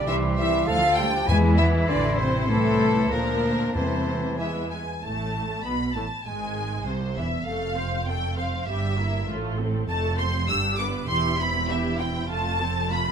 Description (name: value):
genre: quick classical-period movement for symphony orchestra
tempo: 99 BPM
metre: 2/4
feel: straight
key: A minor, C major from 9.9 s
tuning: A4 = 441 Hz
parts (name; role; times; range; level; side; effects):
- rich studio violin section; melody; 0.0-13.1 s; B3 to E6; -32 LUFS; equal; none
- bright clarinet; second line; 0.0-4.5 s; D4 to A4; -34 LUFS; left 2 dB; none
- clear oboe; second line; 0.0-4.5 s; G#5 to C6; -33 LUFS; left 2 dB; none
- hollow concert flute; second line; 0.0-4.4 s; A4 to G#5; -32 LUFS; left 1 dB; none
- warm studio violin section; second line; 0.0-13.1 s; A4 to E6; -29 LUFS; left 1 dB; none
- warm bassoon; accompaniment; 0.0-4.7 s; E3 to G3; -32 LUFS; right 2 dB; none
- warm studio viola section; accompaniment; 0.0-13.1 s; C3 to C5; -32 LUFS; right 1 dB; none
- warm studio cello section; bass; 0.0-13.1 s; C2 to G#3; -30 LUFS; right 1 dB; none
- warm studio double bass section; bass; 0.0-13.1 s; E1 to E2; -29 LUFS; right 2 dB; none
- mellow French horn section; sustained chords; 0.1-4.4 s; A3 to G#4; -28 LUFS; left 4 dB; none
- timpani; percussion; 1.3-4.4 s; E2; -28 LUFS; left 1 dB; none
room: moderate recital hall reverb, RT60 1.7 s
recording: none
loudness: -22 LUFS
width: side -8 dB against mid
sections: 0.0-5.0 A section; 5.0-13.1 B section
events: none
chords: 0.1 C; 0.7 Dm; 1.3 E; 1.9 Am; 2.5 Am/C; 3.1 Bb/D; 3.7 Am/E; 4.4 E; 5.0 Asus2; 6.3 N.C.; 6.9 C; 7.5 F; 8.7 Edim/G; 9.3 F/A; 9.9 F; 10.5 G; 11.1 C/E; 12.3 F